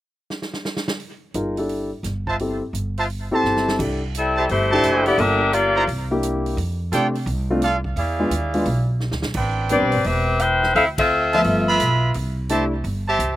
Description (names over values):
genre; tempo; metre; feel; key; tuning
jazz, big band swing; 172 BPM; 4/4; swing 65% on 8ths; C major; A4 = 435 Hz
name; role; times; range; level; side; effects
swinging big-band drum kit; drums; 0.3-13.3 s; crash cymbal, hi-hat, kick drum, ride cymbal, snare drum; -31 LUFS; right 2 dB; none
warm concert grand piano; accompaniment; 1.3-12.7 s; F3 to E5; -23 LUFS; left 1 dB; none
upright bass; bass; 1.3-13.4 s; E1 to C3; -24 LUFS; right 1 dB; none
warm trumpet section; stabs; 2.3-13.4 s; C4 to B5; -23 LUFS; right 2 dB; slapback echo
clear saxophone section; melody; 4.2-5.9, 9.7-12.0 s; G3 to G5; -18 LUFS; left 2 dB; slapback echo
room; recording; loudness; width
little or no reverb; recorded outdoors, with no room sound; -18 LUFS; side -14 dB against mid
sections
0.0-1.0 A section; 1.0-3.8 B section; 3.8-13.4 C section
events
drum fill 0.3-1.0, 3.4-3.8, 9.0-9.4; band accent 10.9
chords
0.0 N.C.; 1.0 C69 (rootless); 2.4 Fmaj7 (rootless); 3.8 C6; 5.2 Gm7; 5.9 C9; 6.6 F69; 8.0 E7b9; 9.4 Am11; 10.8 Dm9; 11.5 G13; 12.2 C6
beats
0.30 0.65 | 1.00 1.35 1.70 2.05 | 2.40 2.74 3.09 3.44 | 3.79 4.14 4.49 4.83 | 5.18 5.53 5.88 6.23 | 6.57 6.92 7.27 7.62 | 7.97 8.31 8.66 9.01 | 9.36 9.71 10.06 10.41 | 10.76 11.11 11.45 11.80 | 12.15 12.50 12.85 13.20